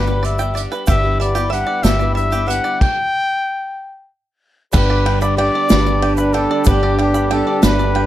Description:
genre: indie folk with a building arrangement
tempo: 62 BPM (dotted quarters)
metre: 6/8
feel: straight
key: G major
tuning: A4 = 439 Hz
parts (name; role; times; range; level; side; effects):
- mellow trumpet; melody; 0.0-8.1 s; G4 to G5; -20 LUFS; left 2 dB; none
- picked twelve-string acoustic guitar; accompaniment; 0.0-8.1 s; G2 to G4; -24 LUFS; left 7 dB; none
- bluegrass banjo; arpeggios; 0.0-8.1 s; G4 to B5; -25 LUFS; right 7 dB; none
- deep dub fingered electric bass; bass; 0.0-8.1 s; G1; -19 LUFS; equal; none
- tube shaker; percussion; 0.1-7.9 s; none; -33 LUFS; right 8 dB; none
- unplugged drum kit; drums; 0.2-8.1 s; crash cymbal, hi-hat, kick drum, ride cymbal, snare drum; -19 LUFS; equal; none
- clear baby grand piano; accompaniment; 0.9-8.1 s; G1 to F#5; -27 LUFS; right 4 dB; none
- warm brass ensemble; sustained chords; 4.7-8.1 s; D3 to G4; -28 LUFS; left 2 dB; none
- warm trombone; second line; 4.8-8.1 s; D4; -21 LUFS; right 5 dB; none
room: little or no reverb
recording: none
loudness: -14 LUFS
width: side -13 dB against mid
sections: 0.0-4.7 A section; 4.7-8.1 B section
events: stop 2.8-4.7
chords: 0.0 G; 0.9 Em7/G; 2.8 N.C.; 4.7 G

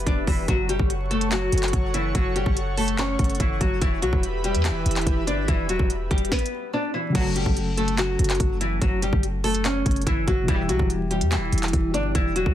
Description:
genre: hip hop, trap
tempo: 144 BPM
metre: 4/4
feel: half-time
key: F# phrygian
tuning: A4 = 440 Hz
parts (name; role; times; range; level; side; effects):
- nylon-string guitar; melody; 0.0-12.5 s; E3 to D5; -26 LUFS; left 1 dB; tape echo
- soft electric-piano-like synth keys; accompaniment; 0.0-0.5, 7.1-12.5 s; B2 to A4; -30 LUFS; left 3 dB; chorus, tremolo
- airy breathy pad; sustained chords; 0.0-6.3 s; G4 to C#6; -33 LUFS; right 1 dB; chorus
- clean 808-style bass; bass; 0.0-12.5 s; E1 to E2; -26 LUFS; equal; none
- trap drum kit; drums; 0.0-12.5 s; crash cymbal, handclaps, hi-hat, kick drum, snare drum; -24 LUFS; equal; none
- mellow brass ensemble; stabs; 7.1-7.3, 10.5-10.6 s; C#2 to G3; -36 LUFS; right 6 dB; none
room: little or no reverb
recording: dense, heavily limited modern master, vinyl crackle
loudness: -21 LUFS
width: side -11 dB against mid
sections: 0.0-7.1 A section; 7.1-12.5 B section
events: stop 6.3-7.1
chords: 0.5 F#m; 3.8 Em; 7.1 F#m; 10.5 Em

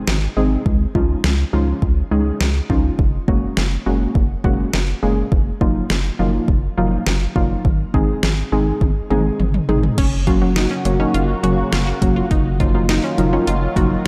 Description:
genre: synth-pop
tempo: 103 BPM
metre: 4/4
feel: straight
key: unclear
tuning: A4 = 440 Hz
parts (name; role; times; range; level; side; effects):
- rubbery square bass; bass; 0.1-14.0 s; Gb1 to Db2; -22 LUFS; equal; none
- deep house drum kit; drums; 0.1-13.9 s; crash cymbal, hi-hat, kick drum, snare drum, toms; -22 LUFS; equal; none
- warbly dusty pluck; accompaniment; 0.4-14.0 s; Gb3 to Ab4; -23 LUFS; equal; chorus, shimmer reverb
- sweeping resonant pad; sustained chords; 10.0-14.1 s; Db3 to Gb4; -27 LUFS; equal; chorus, shimmer reverb
- analog pluck; arpeggios; 10.0-14.0 s; Db4 to Gb4; -28 LUFS; equal; chorus, tape echo, shimmer reverb
room: moderate lush hall reverb, RT60 1.7 s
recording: dark, warm production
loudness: -18 LUFS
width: mono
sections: 0.0-10.0 A section; 10.0-14.1 B section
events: drum fill 8.8-10.0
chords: 0.0 Ab; 0.7 Dbadd9; 3.0 Gbadd9; 5.3 Ebmadd9/Gb; 7.6 Ab; 10.0 Ebmadd9/Gb

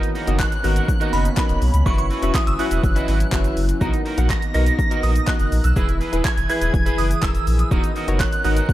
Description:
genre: dance-pop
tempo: 123 BPM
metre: 4/4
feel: straight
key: B major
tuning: A4 = 440 Hz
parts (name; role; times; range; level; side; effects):
- chorused retro synth keys; accompaniment; 0.0-8.6 s; B3 to F#5; -27 LUFS; left 1 dB; tremolo, sidechain pumping
- chorused pulse-width pad; sustained chords; 0.0-8.7 s; D#3 to B4; -29 LUFS; left 1 dB; sidechain pumping
- electric guitar at the edge of break-up; riff; 0.0-8.7 s; D#4 to B4; -31 LUFS; right 4 dB; lush chorus
- deep house drum kit; drums; 0.0-8.7 s; handclaps, hi-hat, kick drum, shaker; -22 LUFS; equal; none
- sub bass with octave; bass; 0.3-8.6 s; D#1 to C#2; -20 LUFS; equal; sidechain pumping
- shimmering bell with halo; melody; 0.4-8.7 s; B5 to A#6; -26 LUFS; right 2 dB; ensemble chorus, ping-pong delay
room: little or no reverb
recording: dark, warm production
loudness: -17 LUFS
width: side -15 dB against mid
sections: 0.0-8.7 A section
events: none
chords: 0.0 Bmaj7; 1.9 F#7sus4; 3.8 Bmaj7; 5.8 E; 7.7 Bmaj7/D#

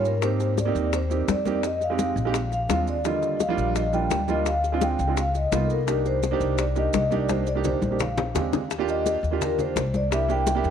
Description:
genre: Afro-Cuban jazz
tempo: 170 BPM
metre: 4/4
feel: straight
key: C minor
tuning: A4 = 440 Hz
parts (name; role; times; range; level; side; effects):
- vibraphone with soft mallets; melody; 0.0-10.7 s; A4 to G5; -27 LUFS; left 2 dB; none
- clear concert grand piano; accompaniment; 0.0-10.7 s; D3 to G4; -28 LUFS; right 9 dB; none
- upright bass; bass; 0.0-10.7 s; Bb1 to Ab2; -27 LUFS; left 2 dB; none
- congas; percussion; 0.0-10.7 s; none; -31 LUFS; left 1 dB; none
- maracas; percussion; 0.0-10.7 s; none; -41 LUFS; right 12 dB; none
- bongos; percussion; 0.2-10.7 s; none; -30 LUFS; left 13 dB; none
room: moderate plate reverb, RT60 2.8 s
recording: 1960s-style stereo with parts hard left and right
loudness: -22 LUFS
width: side -8 dB against mid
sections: 0.0-8.7 A section; 8.7-10.7 B section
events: drum fill 7.3-8.7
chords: 0.2 Abmaj7; 1.6 Fm7; 2.3 Bb7; 3.1 Ebmaj9; 4.5 Dm7b5; 5.2 Db13; 5.9 Cm7; 8.0 Bb13; 8.7 Ebmaj7; 10.1 C7

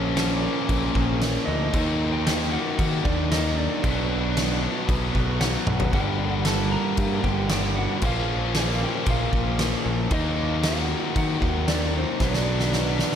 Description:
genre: quiet-loud alternative rock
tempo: 115 BPM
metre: 4/4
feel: straight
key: unclear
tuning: A4 = 440 Hz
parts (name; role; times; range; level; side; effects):
- lightly driven lead guitar; melody; 0.0-13.2 s; C4 to Bb5; -30 LUFS; right 3 dB; none
- overdriven electric guitar; riff; 0.0-13.2 s; G2 to Eb4; -28 LUFS; left 12 dB; none
- thick fuzz guitar; riff; 0.0-13.2 s; G2 to Eb4; -30 LUFS; right 10 dB; distortion
- growling picked electric bass; bass; 0.0-13.0 s; G1 to Eb3; -26 LUFS; equal; overdrive
- oversized low-tuned drum kit; drums; 0.2-13.2 s; crash cymbal, kick drum, snare drum, toms; -26 LUFS; equal; none
room: light reverb, studio reverb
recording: none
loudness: -21 LUFS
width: side -8 dB against mid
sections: 0.0-13.2 A section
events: drum fill 5.7, 12.2-13.2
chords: 0.0 Bbm; 1.7 Ebm; 3.8 Bm; 5.9 Gm; 8.0 Bbm; 10.1 Ebm; 12.2 Bm

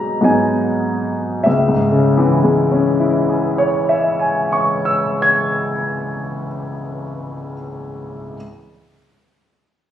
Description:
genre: classical, impressionist solo piano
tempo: 48-54 BPM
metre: 4/4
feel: rubato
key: C# minor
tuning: A4 = 440 Hz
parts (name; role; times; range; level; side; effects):
- clear concert grand piano; solo; 0.0-8.4 s; C#2 to G#6; -15 LUFS; left 1 dB; none
room: moderate large studio reverb, RT60 1.4 s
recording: recorded on a phone in the room, studio reverb, compression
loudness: -14 LUFS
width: side -10 dB against mid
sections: 0.0-1.5 A section; 1.5-6.1 B section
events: slowing down 0.0-1.5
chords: 0.0 G#m7; 1.5 C#m

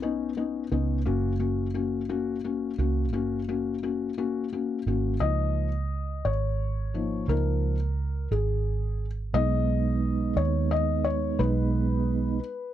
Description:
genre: six-eight pop ballad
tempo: 58 BPM (dotted quarters)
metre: 6/8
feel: straight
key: unclear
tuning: A4 = 440 Hz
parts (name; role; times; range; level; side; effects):
- felt-muted upright piano; accompaniment; 0.0-12.7 s; E#3 to D#5; -29 LUFS; left 7 dB; none
- vintage muted fingered electric bass; bass; 0.0-12.4 s; F#1 to D#2; -27 LUFS; right 2 dB; none
- mellow tonewheel organ; sustained chords; 9.3-12.4 s; G#3 to D#4; -30 LUFS; right 10 dB; fast rotary speaker
room: little or no reverb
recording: dry, close 1970s-style studio recording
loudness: -25 LUFS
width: side -11 dB against mid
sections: 0.0-5.2 A section; 5.2-12.7 B section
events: felt piano solo 5.2-12.7; stop 12.4-12.7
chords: 0.0 Badd9; 1.1 F#; 5.2 C#6; 9.3 G#m/B

